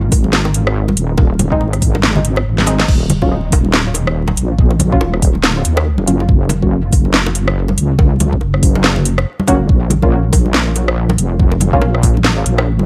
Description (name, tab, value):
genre	deep dubstep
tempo	141 BPM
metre	4/4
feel	swing 59% on 16ths, half-time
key	Eb dorian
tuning	A4 = 440 Hz
part	wobble bass	bass	0.0-12.9 s	Eb1 to Eb2	-17 LUFS	equal	chorus
part	electronic kick drum	drums	0.1-12.1 s	none	-15 LUFS	equal	none
part	garage drum kit	drums	0.1-12.7 s	crash cymbal, hi-hat, rim click, snare drum	-18 LUFS	equal	none
part	bongos and congas	percussion	0.1-12.9 s	none	-23 LUFS	equal	dub echo
part	filtered dub chord stab	stabs	1.5-6.7, 9.5-11.8 s	Gb3 to Gb4	-22 LUFS	equal	chorus, dub echo
room	little or no reverb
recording	vinyl crackle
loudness	-14 LUFS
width	mono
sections	0.0-12.9 A section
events	kick drops out 2.5-2.9; drum fill 2.6-2.9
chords	0.0 Ab; 2.9 Ebm7; 6.3 Gb; 9.7 Bbm